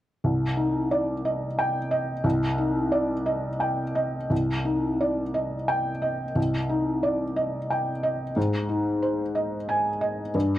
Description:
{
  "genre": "neoclassical minimalist piano",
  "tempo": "60 BPM (dotted quarters)",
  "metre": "6/8",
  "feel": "rubato",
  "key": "C minor",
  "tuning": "A4 = 440 Hz",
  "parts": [
    { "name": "felt-muted upright piano", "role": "solo", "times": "0.2-10.6 s", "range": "C2 to Ab5", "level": "-23 LUFS", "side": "equal", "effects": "none" }
  ],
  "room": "little or no reverb",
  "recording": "dry, close 1970s-style studio recording",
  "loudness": "-24 LUFS",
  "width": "side -14 dB against mid",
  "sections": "0.2-4.3 A section; 4.3-10.6 B section",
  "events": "none",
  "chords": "0.2 Cmadd9; 8.4 Ab"
}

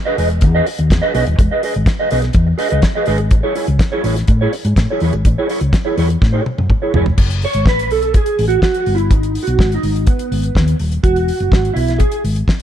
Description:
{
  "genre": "disco",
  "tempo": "124 BPM",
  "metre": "4/4",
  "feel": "straight",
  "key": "E major",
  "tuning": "A4 = 441 Hz",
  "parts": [
    { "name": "mellow electric guitar", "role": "accompaniment", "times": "0.1-12.2 s", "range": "B3 to D#5", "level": "-18 LUFS", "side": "right 3 dB", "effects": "ensemble chorus" },
    { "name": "hollow-body short-scale fingered electric bass", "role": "bass", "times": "0.2-12.4 s", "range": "D#1 to A2", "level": "-16 LUFS", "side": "left 1 dB", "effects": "none" },
    { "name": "damped 70s drum kit", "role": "drums", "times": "0.2-12.6 s", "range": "crash cymbal, hi-hat, kick drum, snare drum, toms", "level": "-16 LUFS", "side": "equal", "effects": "none" }
  ],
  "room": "little or no reverb",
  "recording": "dark, warm production",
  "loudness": "-13 LUFS",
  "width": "side -10 dB against mid",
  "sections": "0.0-7.2 A section; 7.2-12.6 B section",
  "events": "drum fill 6.2-7.2; clean electric guitar solo 7.2-12.6",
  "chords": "0.0 Emaj7; 3.3 Amaj7; 7.2 F#m; 9.1 G#m; 11.0 E"
}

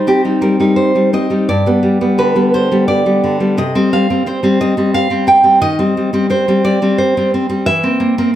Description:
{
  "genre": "romantic piece for solo classical guitar",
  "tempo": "88 BPM",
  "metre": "3/4",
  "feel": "rubato",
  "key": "C minor",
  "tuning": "A4 = 440 Hz",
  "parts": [
    { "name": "nylon-string guitar", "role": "solo", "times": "0.0-8.4 s", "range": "G2 to G5", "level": "-11 LUFS", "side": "equal", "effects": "none" }
  ],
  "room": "moderate recital hall reverb, RT60 1.3 s",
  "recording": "none",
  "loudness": "-11 LUFS",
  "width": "side -12 dB against mid",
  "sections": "0.0-8.4 A section",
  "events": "none",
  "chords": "0.0 Cm; 1.5 G; 3.6 C5; 5.6 Cm/Eb; 7.7 C7/E"
}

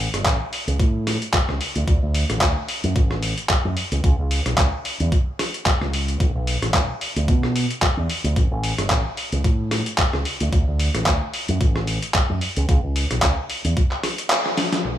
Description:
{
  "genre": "nu-disco, nu disco",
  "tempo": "111 BPM",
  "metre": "4/4",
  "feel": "swing 56% on 16ths",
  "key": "unclear",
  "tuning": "A4 = 440 Hz",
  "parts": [
    { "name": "fingered electric bass with an envelope filter", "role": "bass", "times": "0.0-15.0 s", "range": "G1 to B2", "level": "-22 LUFS", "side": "equal", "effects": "sidechain pumping" },
    { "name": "dusty soul sampler-style drum kit", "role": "drums", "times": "0.1-15.0 s", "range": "handclaps, hi-hat, rim click, shaker, snare drum", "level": "-23 LUFS", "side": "equal", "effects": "overdrive, low-pass filter on toms, low-pass filter on snare, low-pass filter on hats, low-pass filter on perc, low-pass filter on room" },
    { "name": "electronic kick drum", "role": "drums", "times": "0.3-13.9 s", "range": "none", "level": "-19 LUFS", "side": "equal", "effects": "none" }
  ],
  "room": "light reverb",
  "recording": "none",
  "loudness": "-19 LUFS",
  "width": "side -12 dB against mid",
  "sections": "0.0-14.8 A section",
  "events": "band accent 14.3; drum fill 14.6",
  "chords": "none"
}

